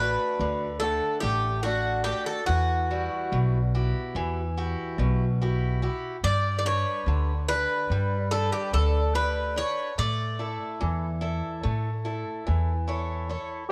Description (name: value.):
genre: greek folk.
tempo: 144 BPM (eighths).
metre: 9/8.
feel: straight.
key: unclear.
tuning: A4 = 440 Hz.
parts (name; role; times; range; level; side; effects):
Greek bouzouki; melody; 0.0-12.8 s; F#4 to D5; -30 LUFS; equal; none.
picked acoustic archtop guitar; accompaniment; 0.0-13.6 s; B2 to F#5; -34 LUFS; equal; none.
upright bass; bass; 0.0-13.3 s; A1 to A2; -29 LUFS; equal; none.
room: light reverb, small room ambience.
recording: none.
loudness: -27 LUFS.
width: mono.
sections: 0.0-13.7 A section.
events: none.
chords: 0.0 D; 2.5 Emadd9; 6.2 G; 10.0 A.